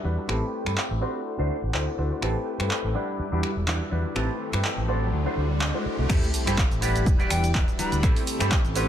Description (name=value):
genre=filtered disco house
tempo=124 BPM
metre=4/4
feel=swing 55% on 16ths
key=A dorian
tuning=A4 = 439 Hz
part: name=bright grand piano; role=accompaniment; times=0.0-8.9 s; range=G3 to B5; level=-30 LUFS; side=left 2 dB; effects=phaser, vintage 12-bit sampler grit, sidechain pumping, low-pass filter
part: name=string machine, full ensemble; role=sustained chords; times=0.0-8.9 s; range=G3 to D6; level=-36 LUFS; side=equal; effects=phaser, ensemble chorus, sidechain pumping, low-pass filter
part: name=electric guitar with an envelope filter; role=riff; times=0.0-8.9 s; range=C4 to D5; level=-34 LUFS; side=right 5 dB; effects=sidechain pumping, low-pass filter
part: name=overdriven fingered electric bass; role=bass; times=0.0-8.9 s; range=E1 to G2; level=-27 LUFS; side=equal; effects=sidechain pumping, low-pass filter
part: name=punchy analog drum machine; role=drums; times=0.3-8.9 s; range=crash cymbal, finger snaps, handclaps, hi-hat, shaker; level=-30 LUFS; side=equal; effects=sidechain pumping on hats, sidechain pumping on cymbals, sidechain pumping on perc
part: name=riser and sub drop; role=sound effects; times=4.0-8.0 s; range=none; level=-33 LUFS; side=equal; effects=none
part: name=electronic kick drum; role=drums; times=6.1-8.6 s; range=none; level=-23 LUFS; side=equal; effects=none
part: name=bright silver concert flute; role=melody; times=7.3-8.1 s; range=G5 to B5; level=-33 LUFS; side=equal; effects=sidechain pumping, low-pass filter, dub echo
room=light reverb, digital ambience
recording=none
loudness=-23 LUFS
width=side -10 dB against mid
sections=0.0-6.1 A section; 6.1-8.9 B section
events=riser 4.0-6.1; drop 6.1-8.9; impact 6.1-8.0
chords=0.3 Am7; 1.3 D7; 2.2 Am7; 3.0 Em7; 4.2 Am7; 5.1 D7; 6.1 Am7; 6.8 Em7; 8.0 Am7